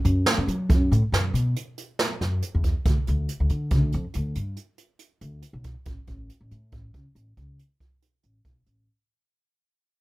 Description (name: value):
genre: progressive instrumental, band music in an uneven meter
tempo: 139 BPM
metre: 7/4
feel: straight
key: A mixolydian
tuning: A4 = 440 Hz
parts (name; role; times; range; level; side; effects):
- upright bass; bass; 0.0-8.9 s; A1 to F#3; -24 LUFS; equal; none
- jazz brush drum kit; drums; 0.0-8.8 s; hi-hat, kick drum, snare drum; -25 LUFS; right 1 dB; none
room: light reverb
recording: none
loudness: -22 LUFS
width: side -18 dB against mid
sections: 0.0-8.9 A section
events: fade-out 0.0-8.9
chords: none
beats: 0.27 0.70 1.13 1.56 1.99 2.42 | 2.85 3.28 3.71 4.14 4.57 5.00 5.43 | 5.87 6.30 6.73 7.16 7.59 8.02 8.45